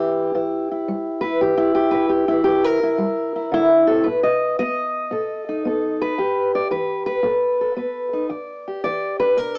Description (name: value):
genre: acoustic country blues, solo or duo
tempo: 113 BPM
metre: 4/4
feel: swing 68% on 8ths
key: E minor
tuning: A4 = 440 Hz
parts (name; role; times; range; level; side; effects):
- fingerpicked steel-string acoustic guitar; solo; 0.0-9.6 s; E2 to D#5; -18 LUFS; equal; cassette tape
room: moderate spring reverb, RT60 1.5 s, small room ambience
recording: home recording on cassette, small speaker sound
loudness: -18 LUFS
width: side -35 dB against mid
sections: 0.0-8.3 A section; 8.3-9.6 B section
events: steel-string acoustic guitar solo 8.3-9.6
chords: 0.0 C7; 4.1 B7; 6.2 Em; 7.2 B7; 8.3 Em7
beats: 0.34 0.87 1.40 | 1.93 2.46 3.00 3.53 | 4.06 4.59 5.12 5.65 | 6.18 6.71 7.25 7.78 | 8.31 8.84 9.37